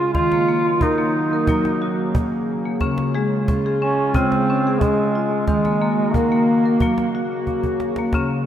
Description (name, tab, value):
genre	world meditative, meditative tuned percussion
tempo	90 BPM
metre	4/4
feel	straight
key	Gb lydian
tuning	A4 = 440 Hz
part	warm duduk	melody	0.0-7.5 s	Ab3 to F4	-20 LUFS	right 2 dB	tape echo
part	evolving wavetable pad	sustained chords	0.0-8.5 s	Db3 to Gb4	-24 LUFS	right 1 dB	chorus, built-in reverb
part	marimba with medium hard mallets	arpeggios	0.0-8.5 s	Db3 to Bb4	-22 LUFS	left 3 dB	none
part	cajon	percussion	0.1-8.3 s	none	-23 LUFS	equal	none
room	wet lush hall reverb, RT60 3.0 s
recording	dreamy mix soaked in reverb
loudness	-17 LUFS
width	side -10 dB against mid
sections	0.0-8.5 A section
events	drum fill 7.5-8.1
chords	0.2 Ebm; 1.5 Gb; 2.8 Db; 5.5 Ebm; 6.8 Gb